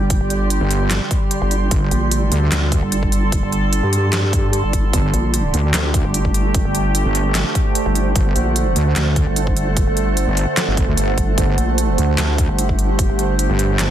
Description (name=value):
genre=heavy wobble dubstep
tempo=149 BPM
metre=4/4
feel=half-time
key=unclear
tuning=A4 = 440 Hz
part: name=evolving wavetable pad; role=sustained chords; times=0.0-13.9 s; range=D3 to A4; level=-23 LUFS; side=right 3 dB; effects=chorus, built-in reverb, sidechain pumping
part: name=vowel-sweep wobble bass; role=bass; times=0.0-13.5 s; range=G1 to G2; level=-19 LUFS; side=equal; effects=chorus, overdrive
part: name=ethereal airy pad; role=texture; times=0.0-13.9 s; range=C5 to C6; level=-27 LUFS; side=right 3 dB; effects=ensemble chorus, built-in reverb, sidechain pumping
part: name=dubstep drum kit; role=drums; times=0.1-13.9 s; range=handclaps, hi-hat, snare drum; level=-22 LUFS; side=equal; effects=studio reverb
part: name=electronic kick drum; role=drums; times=0.1-13.1 s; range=none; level=-20 LUFS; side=equal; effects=studio reverb
part: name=wobble bass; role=bass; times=0.6-13.9 s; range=G1 to D2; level=-18 LUFS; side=equal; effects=chorus, overdrive
room=digital ambience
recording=dense, heavily limited modern master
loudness=-15 LUFS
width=side -11 dB against mid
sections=0.0-13.9 A section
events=none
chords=0.0 G5